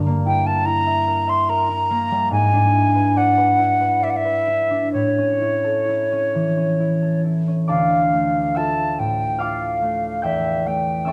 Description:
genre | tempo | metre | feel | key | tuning
classical, romantic duo for flute and harp | 64-74 BPM | 3/4 | rubato | D minor | A4 = 439 Hz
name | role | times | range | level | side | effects
concert harp | accompaniment | 0.0-11.1 s | D2 to G6 | -23 LUFS | equal | none
silver concert flute | melody | 0.3-11.1 s | C#5 to C6 | -21 LUFS | equal | none
room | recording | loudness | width
moderate scoring stage reverb, RT60 1.7 s | close, detailed microphones | -19 LUFS | mono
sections
0.0-7.7 A section; 7.7-11.1 B section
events
none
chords
0.0 Edim/G; 2.3 E7/G#; 4.9 A; 7.7 Dm; 10.2 A7(no3)/E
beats
0.67 1.50 | 2.33 3.17 4.03 | 4.93 5.88 6.80 | 7.69 8.56 9.40 | 10.23 11.07

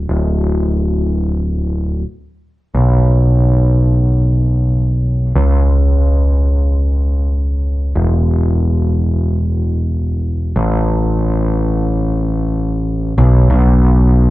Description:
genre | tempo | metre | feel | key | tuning
post-rock | free time | none | none | unclear | A4 = 440 Hz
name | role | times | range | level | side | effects
growling picked electric bass | solo | 0.0-14.3 s | D1 to C#2 | -12 LUFS | equal | overdrive
room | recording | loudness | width
moderate large studio reverb, RT60 0.9 s | band playing live in one room, lossy compression artefacts | -12 LUFS | side -17 dB against mid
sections
0.0-2.7 A section; 2.7-13.2 B section; 13.2-14.3 C section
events
break 2.1-2.7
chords
none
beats
free time

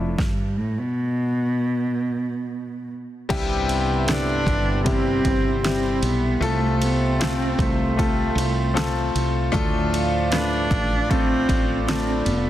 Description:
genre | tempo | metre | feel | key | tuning
pop ballad | 77 BPM | 4/4 | straight | C major | A4 = 441 Hz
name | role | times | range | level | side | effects
dark cello | melody | 0.0-12.5 s | F2 to D4 | -24 LUFS | right 1 dB | none
clear concert grand piano | accompaniment | 0.0-12.5 s | G2 to B4 | -25 LUFS | left 3 dB | none
woody fretless electric bass | bass | 0.0-12.5 s | F1 to D2 | -25 LUFS | equal | none
deep house drum kit | drums | 0.2-12.4 s | crash cymbal, kick drum, ride cymbal, snare drum | -26 LUFS | equal | overdrive
mellow French horn section | second line | 3.3-12.3 s | C3 to F4 | -31 LUFS | right 4 dB | none
glass harmonica | sustained chords | 3.3-12.5 s | G4 to D6 | -34 LUFS | right 4 dB | none
room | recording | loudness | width
light reverb | dense, heavily limited modern master | -19 LUFS | side -12 dB against mid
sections
0.0-3.3 A section; 3.3-12.5 B section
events
none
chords
0.2 N.C.; 3.3 C; 6.4 F/C; 9.5 Dm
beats
| 0.19 0.96 1.75 2.52 | 3.30 4.08 4.86 5.64 | 6.42 7.20 7.98 8.76 | 9.54 10.32 11.10 11.88

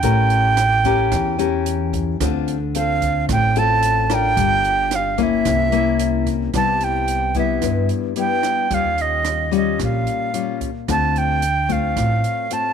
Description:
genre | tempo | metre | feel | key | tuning
bossa nova | 111 BPM | 4/4 | straight | unclear | A4 = 439 Hz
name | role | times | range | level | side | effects
breathy silver concert flute | melody | 0.0-12.7 s | Eb5 to A5 | -20 LUFS | right 4 dB | none
nylon-string guitar | accompaniment | 0.0-12.7 s | G2 to Bb4 | -22 LUFS | left 12 dB | none
upright bass | bass | 0.0-12.2 s | G1 to G2 | -22 LUFS | right 2 dB | none
open jazz drum kit | drums | 0.0-12.6 s | hi-hat, kick drum, rim click | -29 LUFS | right 7 dB | none
room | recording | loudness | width
light reverb, studio reverb | 1960s-style stereo with parts hard left and right | -16 LUFS | side -7 dB against mid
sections
0.0-6.5 A section; 6.5-12.7 B section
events
none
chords
0.0 A7b9; 2.2 Dm7; 4.4 Gm7; 5.5 C7b9; 6.5 Cmaj7; 8.7 Eb9; 10.9 Dm7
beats
| 0.04 0.58 1.12 1.66 | 2.20 2.75 3.29 3.83 | 4.37 4.91 5.46 6.00 | 6.54 7.08 7.62 8.17 | 8.71 9.25 9.80 10.34 | 10.88 11.43 11.97 12.51

